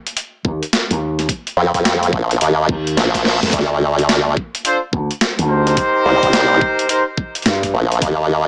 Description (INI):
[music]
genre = glitch hop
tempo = 107 BPM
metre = 4/4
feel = swing 63% on 16ths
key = unclear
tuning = A4 = 439 Hz
[part]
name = boom bap sampler-style drum kit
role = drums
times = 0.1-8.2 s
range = hi-hat, snare drum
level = -22 LUFS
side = equal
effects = overdrive
[part]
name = slap bass with an envelope filter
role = bass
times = 0.4-7.7 s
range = D2 to G2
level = -21 LUFS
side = equal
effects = none
[part]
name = electronic kick drum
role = drums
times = 0.4-8.2 s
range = none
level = -25 LUFS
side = equal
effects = none
[part]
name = formant-sweep wobble bass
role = bass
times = 1.6-8.5 s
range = Bb1 to F2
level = -17 LUFS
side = equal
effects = chorus
[part]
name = reverse cymbal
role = sound effects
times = 2.7-3.5 s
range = none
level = -27 LUFS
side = equal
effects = none
[part]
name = clear horn section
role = stabs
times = 4.7-7.0 s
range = D4 to C5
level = -19 LUFS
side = equal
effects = sidechain pumping, tape echo
[sound]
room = little or no reverb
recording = small speaker sound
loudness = -17 LUFS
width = mono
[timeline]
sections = 0.0-8.5 A section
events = reverse cymbal 2.7-3.5; drum fill 3.1-3.5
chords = 0.0 N.C.; 1.3 F7sus4; 3.5 D7(no3); 5.8 Cm7